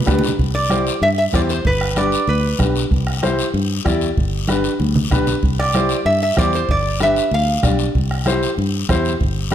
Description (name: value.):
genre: latin, cumbia.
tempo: 191 BPM.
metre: 4/4.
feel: straight.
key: C major.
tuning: A4 = 440 Hz.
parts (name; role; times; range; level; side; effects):
lap resonator guitar; melody; 0.0-2.7, 5.6-7.8 s; B4 to F5; -19 LUFS; right 2 dB; slapback echo.
dark upright piano; accompaniment; 0.1-9.5 s; D4 to D5; -22 LUFS; left 2 dB; none.
fingered electric bass; bass; 0.1-9.5 s; G1 to G2; -20 LUFS; equal; none.
bombo; percussion; 0.1-9.5 s; none; -22 LUFS; right 1 dB; none.
congas; percussion; 0.1-9.5 s; none; -25 LUFS; right 1 dB; none.
guiro; percussion; 0.1-9.5 s; none; -28 LUFS; left 8 dB; none.
room: moderate large studio reverb, RT60 1.4 s.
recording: none.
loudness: -15 LUFS.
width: side -10 dB against mid.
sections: 0.4-9.5 A section.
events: drum fill 0.0-0.4, 4.8-5.4.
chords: 0.4 C; 1.7 G; 2.9 C; 4.2 G; 5.4 C; 6.7 G7; 7.9 C.